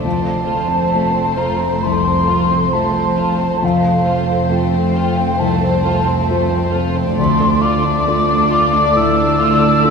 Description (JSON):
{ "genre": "cinematic, emotional film score for orchestra", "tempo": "67 BPM", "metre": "4/4", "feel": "rubato", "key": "unclear", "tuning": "A4 = 440 Hz", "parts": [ { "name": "warm symphonic violin section", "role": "melody", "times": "0.0-9.9 s", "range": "C5 to D5", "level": "-23 LUFS", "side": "left 4 dB", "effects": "none" }, { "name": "mellow hollow concert flute", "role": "second line", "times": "0.0-9.9 s", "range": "F5 to E6", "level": "-18 LUFS", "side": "equal", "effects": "none" }, { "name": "warm chamber violin section", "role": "second line", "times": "0.0-9.9 s", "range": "A3 to F4", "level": "-24 LUFS", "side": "left 4 dB", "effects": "none" }, { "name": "dark symphonic viola section", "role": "accompaniment", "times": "0.0-9.9 s", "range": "A3", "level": "-26 LUFS", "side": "right 1 dB", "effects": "none" }, { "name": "warm concert grand piano", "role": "accompaniment", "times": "0.0-9.9 s", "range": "C2 to F4", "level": "-22 LUFS", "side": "left 1 dB", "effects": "none" }, { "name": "concert harp", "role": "arpeggios", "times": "0.0-9.9 s", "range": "D3 to C5", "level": "-24 LUFS", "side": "left 4 dB", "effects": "none" }, { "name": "dark symphonic double bass section", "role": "bass", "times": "0.0-9.9 s", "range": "F1 to D2", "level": "-23 LUFS", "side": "right 4 dB", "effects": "none" }, { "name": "warm chamber cello section", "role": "bass", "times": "0.1-9.9 s", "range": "D2 to F2", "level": "-22 LUFS", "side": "right 3 dB", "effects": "none" } ], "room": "wet cathedral reverb, RT60 5.8 s", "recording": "recorded in a church or concert hall", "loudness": "-13 LUFS", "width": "side -5 dB against mid", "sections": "0.0-9.9 A section", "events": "none", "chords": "0.1 F; 7.2 Dm" }